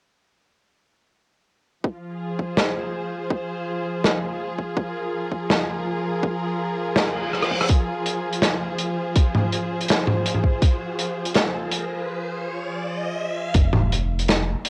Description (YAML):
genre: half-time drum and bass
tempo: 164 BPM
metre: 4/4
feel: half-time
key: F minor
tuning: A4 = 438 Hz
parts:
  - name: rich studio string section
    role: sustained chords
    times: 1.8-13.6 s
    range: F3 to C5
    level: -29 LUFS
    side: equal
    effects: sidechain pumping
  - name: electronic kick drum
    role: drums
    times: 1.8-10.7, 13.5-13.6 s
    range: none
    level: -22 LUFS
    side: equal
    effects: high-pass filter on kick, cassette tape
  - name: crunchy breakbeat drum kit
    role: drums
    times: 2.6-14.7 s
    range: hi-hat, rim click, snare drum, toms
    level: -24 LUFS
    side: equal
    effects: cassette tape
  - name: reverse cymbal, riser and sub drop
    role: sound effects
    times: 7.1-14.7 s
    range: none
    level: -33 LUFS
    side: equal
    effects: none
  - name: long sustained 808-style bass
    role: bass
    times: 13.5-14.5 s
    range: F1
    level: -26 LUFS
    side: equal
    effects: none
room: moderate studio reverb, RT60 0.6 s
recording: home recording on cassette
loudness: -24 LUFS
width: mono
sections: 1.8-7.7 A section; 7.7-13.5 B section; 13.5-14.7 C section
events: reverse cymbal 7.1-7.7; drum fill 7.3-7.7; build-up 7.7-13.5; riser 7.7-13.5; break 12.1-13.5; drop 13.5-14.7; impact 13.5-14.7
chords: 1.8 Fm; 13.5 N.C.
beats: | 1.84 2.21 2.57 2.94 | 3.31 3.67 4.04 4.40 | 4.77 5.13 5.50 5.87 | 6.23 6.60 6.96 7.33 | 7.70 8.06 8.43 8.79 | 9.16 9.52 9.89 10.26 | 10.62 10.99 11.35 11.72 | 12.09 12.45 12.82 13.18 | 13.55 13.91 14.28 14.65